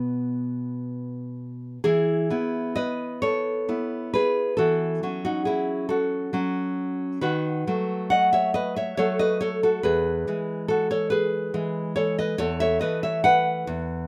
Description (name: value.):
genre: romantic piece for solo classical guitar.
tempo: 40-47 BPM (dotted quarters).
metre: 6/8.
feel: rubato.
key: E major.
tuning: A4 = 441 Hz.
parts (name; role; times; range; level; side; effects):
nylon-string guitar; solo; 0.0-14.1 s; E2 to F#5; -25 LUFS; equal; none.
room: light reverb.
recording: none.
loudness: -25 LUFS.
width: mono.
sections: 0.0-1.8 A section; 1.8-14.1 B section.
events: none.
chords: 0.0 B; 1.8 E; 4.6 F#m7/E; 7.2 B7/D#; 9.8 E; 12.4 A/E.